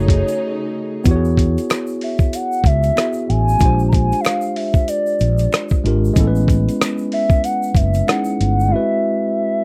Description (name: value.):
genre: R&B, neo-soul.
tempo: 94 BPM.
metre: 4/4.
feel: swing 57% on 16ths.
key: E major.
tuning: A4 = 442 Hz.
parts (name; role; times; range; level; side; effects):
gliding portamento lead; melody; 0.0-9.6 s; C#5 to A#5; -23 LUFS; equal; chorus.
bright tine electric piano; accompaniment; 0.0-9.6 s; G#3 to E5; -24 LUFS; equal; none.
warm studio string section; sustained chords; 0.0-1.1 s; C#3 to G#4; -32 LUFS; equal; none.
mellow fretless electric bass; bass; 0.0-8.7 s; F#1 to E2; -19 LUFS; equal; none.
dusty soul sampler-style drum kit; drums; 0.1-8.6 s; hi-hat, kick drum, rim click; -18 LUFS; equal; none.
egg shaker and finger snaps; percussion; 0.3-8.7 s; none; -38 LUFS; equal; none.
room: little or no reverb.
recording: dry, close 1970s-style studio recording.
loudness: -17 LUFS.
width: mono.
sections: 0.0-1.1 A section; 1.1-9.6 B section.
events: break 0.4-1.1; drums muted 8.7-9.6.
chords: 0.0 B13 (rootless); 1.1 E6; 3.6 A#13; 6.2 Amaj9#11; 8.7 G#7alt.